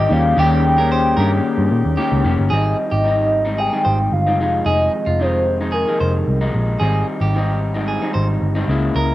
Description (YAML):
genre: indie pop, bedroom pop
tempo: 112 BPM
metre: 4/4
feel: straight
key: Ab major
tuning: A4 = 440 Hz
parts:
  - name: hollow clarinet-like synth lead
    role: melody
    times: 0.0-6.5 s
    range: Bb4 to G5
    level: -19 LUFS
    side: left 1 dB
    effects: chorus
  - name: clean electric guitar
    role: second line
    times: 0.0-9.1 s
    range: F4 to C5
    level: -24 LUFS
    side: right 3 dB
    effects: slapback echo
  - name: electric guitar through a small old amp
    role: accompaniment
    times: 0.0-9.1 s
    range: F2 to G4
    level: -21 LUFS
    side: left 2 dB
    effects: warbly pitch drift
  - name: mellow woodwind section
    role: sustained chords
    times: 0.0-2.5 s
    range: Db3 to G4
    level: -26 LUFS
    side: right 1 dB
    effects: none
  - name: vintage muted picked electric bass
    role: bass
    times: 0.0-9.1 s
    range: F1 to Bb2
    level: -18 LUFS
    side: equal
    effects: none
room: little or no reverb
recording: recorded outdoors, with no room sound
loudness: -15 LUFS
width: side -15 dB against mid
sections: 0.0-2.5 A section; 2.5-9.1 B section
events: none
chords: 0.1 Eb7; 2.5 Abmaj7; 4.4 Fm7; 6.8 Abmaj7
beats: | 0.38 0.92 1.45 1.99 | 2.52 3.06 3.59 4.13 | 4.66 5.20 5.73 6.27 | 6.80 7.34 7.88 8.41 | 8.95